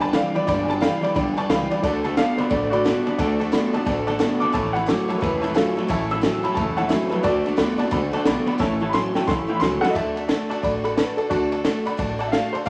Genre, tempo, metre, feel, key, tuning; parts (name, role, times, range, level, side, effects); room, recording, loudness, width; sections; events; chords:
rockabilly; 177 BPM; 4/4; swing 63% on 8ths; D major; A4 = 440 Hz
dark upright piano; melody; 0.0-12.7 s; D4 to E6; -27 LUFS; equal
picked steel-string acoustic guitar; accompaniment; 0.0-12.7 s; A2 to B4; -31 LUFS; equal
tack piano; accompaniment; 0.0-12.7 s; C#5 to D6; -32 LUFS; equal
electric guitar through a small old amp; riff; 0.0-9.9 s; G2 to B3; -27 LUFS; equal
upright bass; bass; 0.0-12.6 s; E1 to D2; -36 LUFS; equal
compact cocktail drum kit; drums; 0.0-12.7 s; kick drum, ride cymbal, snare drum; -28 LUFS; equal
moderate large studio reverb, RT60 0.8 s; vinyl crackle; -22 LUFS; mono
0.0-9.9 A section; 9.9-12.7 B section
upright piano solo 0.0-9.9; drum fill 8.6-9.9
0.0 G; 1.8 D; 4.5 A; 7.2 D; 8.6 A; 9.9 D